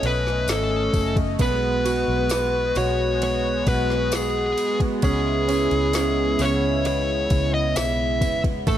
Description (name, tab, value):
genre	pop ballad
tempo	66 BPM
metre	4/4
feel	straight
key	C# minor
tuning	A4 = 439 Hz
part	fuzz lead guitar	melody	0.0-8.8 s	G#4 to E5	-24 LUFS	left 1 dB	distortion
part	clear concert grand piano	accompaniment	0.0-8.8 s	A3 to F#4	-28 LUFS	right 6 dB	none
part	chorused pulse-width pad	sustained chords	0.0-8.8 s	C#3 to D#5	-26 LUFS	equal	none
part	vintage muted fingered electric bass	bass	0.0-8.8 s	E1 to C#2	-26 LUFS	equal	none
part	smooth R&B drum kit	drums	0.0-8.8 s	kick drum, ride cymbal, snare drum	-28 LUFS	equal	none
part	tambourine	percussion	0.5-8.8 s	none	-38 LUFS	left 13 dB	none
room	light reverb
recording	none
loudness	-19 LUFS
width	side -11 dB against mid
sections	0.0-8.8 A section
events	none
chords	0.0 B7; 1.4 G#m7/B; 5.0 C#m7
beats	0.48 | 1.39 2.30 3.21 4.12 | 5.03 5.94 6.85 7.76 | 8.67